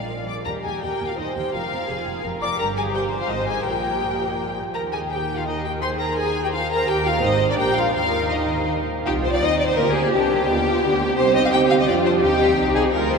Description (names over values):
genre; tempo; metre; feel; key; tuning
quick classical-period movement for string orchestra; 168 BPM; 3/4; straight; Eb major, C minor from 9.1 s; A4 = 438 Hz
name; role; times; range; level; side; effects
clear studio violin section; melody; 0.0-13.2 s; C4 to D6; -26 LUFS; left 4 dB; none
warm studio violin section; second line; 0.0-13.2 s; G4 to G5; -23 LUFS; left 1 dB; none
rich studio viola section; accompaniment; 0.0-13.2 s; Bb3 to D5; -25 LUFS; right 1 dB; none
rich studio cello section; bass; 0.0-13.2 s; Eb2 to G4; -29 LUFS; right 2 dB; none
rich studio double bass section; bass; 0.0-13.2 s; F1 to F2; -29 LUFS; right 4 dB; none
room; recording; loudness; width
wet cathedral reverb, RT60 6.6 s; minimal, uncompressed stereo recording; -19 LUFS; side -5 dB against mid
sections
0.5-9.1 A section; 9.1-13.2 B section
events
none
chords
0.5 Eb; 1.5 Bb5/F; 2.6 Abmaj13/G; 3.3 Ab; 3.7 Gm/Bb; 4.7 Eb; 7.2 Ab; 7.6 Bb5; 8.0 Eb5; 9.1 Cm; 10.1 G7/C; 11.2 Cm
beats
0.10 | 0.46 0.82 1.18 | 1.54 1.89 2.24 | 2.59 2.94 3.29 | 3.65 4.02 4.38 | 4.74 5.10 5.46 | 5.82 6.17 6.53 | 6.87 7.23 7.58 | 7.95 8.32 8.69 | 9.05 9.41 9.77 | 10.13 10.48 10.83 | 11.19 11.54 11.89 | 12.24 12.59 12.94